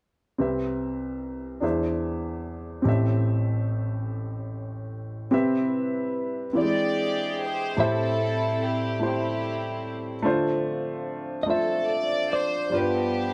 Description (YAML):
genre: gospel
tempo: 49 BPM (dotted quarters)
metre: 6/8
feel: straight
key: C major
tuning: A4 = 440 Hz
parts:
  - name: warm upright piano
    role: accompaniment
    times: 0.4-13.3 s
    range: A1 to E5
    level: -28 LUFS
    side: equal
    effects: none
  - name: mellow French horn section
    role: sustained chords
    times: 5.3-13.3 s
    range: F3 to B4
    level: -37 LUFS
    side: equal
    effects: none
  - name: rich studio string section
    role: melody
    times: 6.6-13.3 s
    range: B3 to D5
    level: -32 LUFS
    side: equal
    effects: none
  - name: clean electric guitar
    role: melody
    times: 7.8-13.3 s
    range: B4 to E5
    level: -30 LUFS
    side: equal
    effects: none
room: moderate studio reverb, RT60 0.6 s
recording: band playing live in one room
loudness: -26 LUFS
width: mono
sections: 0.4-5.3 A section; 5.3-13.3 B section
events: none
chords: 0.4 Cmaj7; 1.6 Eaug7; 2.9 Am7; 5.3 Cmaj7; 6.6 E7alt; 7.8 Am7; 10.3 Dm7; 12.7 G7